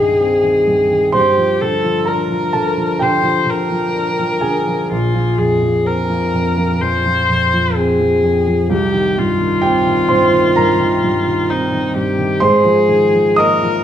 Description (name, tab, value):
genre	classical, impressionist duo for viola and grand piano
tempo	64 BPM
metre	4/4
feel	rubato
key	C minor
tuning	A4 = 439 Hz
part	rich viola	melody	0.0-13.8 s	Eb4 to C5	-16 LUFS	left 2 dB	none
part	dark grand piano	accompaniment	0.0-13.8 s	Bb1 to Eb6	-16 LUFS	right 1 dB	none
room	wet recital hall reverb, RT60 1.5 s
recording	minimal, uncompressed stereo recording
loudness	-13 LUFS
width	side -10 dB against mid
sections	0.0-13.8 A section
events	none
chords	0.0 Abmaj7/C; 1.2 Gm9; 4.9 Bbsus2; 8.7 Cm7; 12.4 Ab69